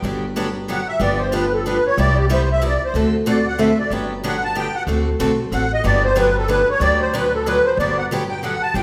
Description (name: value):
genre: acoustic string swing (jazz manouche)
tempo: 186 BPM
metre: 3/4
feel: swing 60% on 8ths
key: G major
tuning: A4 = 440 Hz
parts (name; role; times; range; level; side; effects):
- picked steel-string acoustic guitar; accompaniment; 0.0-8.8 s; C3 to A4; -24 LUFS; equal; none
- upright bass; bass; 0.0-8.8 s; G1 to D2; -25 LUFS; equal; none
- musette accordion; melody; 0.7-8.8 s; G4 to A5; -21 LUFS; equal; none
room: wet recital hall reverb, RT60 1.3 s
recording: recorded in a church or concert hall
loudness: -19 LUFS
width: mono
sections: 0.0-7.8 A section; 7.8-8.8 A section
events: accordion solo 0.0-8.8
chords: 0.0 Gmaj7; 1.0 G7; 2.0 Cmaj7; 2.9 D7; 3.9 Gmaj7; 4.9 D7; 5.8 Gmaj7